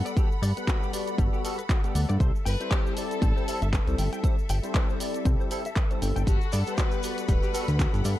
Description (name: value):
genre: nu-disco, nu disco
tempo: 118 BPM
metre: 4/4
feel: swing 56% on 16ths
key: G major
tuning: A4 = 441 Hz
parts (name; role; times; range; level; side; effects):
- barky tine electric piano; accompaniment; 0.0-8.2 s; G3 to F#5; -34 LUFS; left 1 dB; ensemble chorus, sidechain pumping, slapback echo
- rich studio string section; sustained chords; 0.0-8.2 s; A4 to B5; -39 LUFS; left 2 dB; sidechain pumping
- fat analog bass; bass; 0.0-8.2 s; D1 to G2; -25 LUFS; equal; none
- direct-recorded clean electric guitar; riff; 0.1-8.1 s; G3 to G5; -38 LUFS; left 4 dB; ensemble chorus, slapback echo
- pop drum kit; drums; 0.1-8.2 s; handclaps, hi-hat, shaker; -35 LUFS; equal; none
- electronic kick drum; drums; 0.2-7.9 s; none; -25 LUFS; equal; none
- dark chamber violin section; melody; 2.5-8.0 s; F#4 to C5; -36 LUFS; left 3 dB; tape echo
- cabasa; percussion; 6.3-8.2 s; none; -44 LUFS; right 3 dB; none
room: digital ambience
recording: dark, warm production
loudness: -24 LUFS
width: side -14 dB against mid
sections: 0.0-8.2 A section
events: none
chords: 0.0 Gmaj9; 2.2 C6; 6.3 Gmaj9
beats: | 0.17 0.68 1.19 1.70 | 2.21 2.71 3.22 3.73 | 4.24 4.75 5.26 5.76 | 6.27 6.78 7.29 7.80